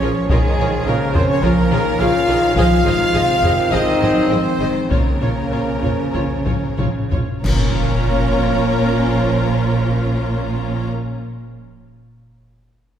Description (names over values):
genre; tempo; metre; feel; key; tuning
cinematic, epic orchestral film score; 90-106 BPM; 4/4; straight; Bb minor; A4 = 440 Hz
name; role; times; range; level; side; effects
clear symphonic violin section; melody; 0.0-10.9 s; Ab4 to Bb5; -28 LUFS; left 3 dB; none
warm symphonic violin section; second line; 0.0-10.9 s; Bb4 to Eb5; -28 LUFS; left 1 dB; none
rich symphonic viola section; accompaniment; 0.0-10.9 s; Db4 to Db5; -26 LUFS; right 1 dB; none
bright trombone section; sustained chords; 0.0-10.9 s; Eb3 to Db4; -26 LUFS; right 1 dB; none
dark French horn section; sustained chords; 0.0-10.9 s; Ab3 to F4; -22 LUFS; left 2 dB; none
mellow trumpet; stabs; 0.0-10.9 s; Ab4 to F5; -25 LUFS; right 1 dB; none
rich studio cello section; bass; 0.0-10.9 s; Bb2 to Gb3; -23 LUFS; right 1 dB; none
rich symphonic double bass section; bass; 0.0-10.9 s; Ab1 to Bb1; -23 LUFS; right 2 dB; none
taiko ensemble; drums; 0.3-7.4 s; none; -21 LUFS; left 1 dB; none
clash cymbals and concert bass drum; percussion; 7.4-8.7 s; none; -24 LUFS; left 1 dB; none
impact; sound effects; 7.4-11.2 s; none; -29 LUFS; left 1 dB; none
room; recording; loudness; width
wet scoring stage reverb, RT60 2.1 s; heard from further back in the room; -15 LUFS; side -9 dB against mid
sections
0.0-7.4 A section; 7.4-10.1 B section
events
slowing down 1.4-7.4; drum fill 6.5-7.4; band accent 7.4-8.1; impact 7.4-10.1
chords
0.0 Bbm7; 2.6 Ab; 4.9 Bbm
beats
| 0.30 0.87 1.43 2.00 | 2.57 3.14 3.72 4.31 | 4.91 5.52 6.14 6.78 | 7.44 8.11 8.77 9.44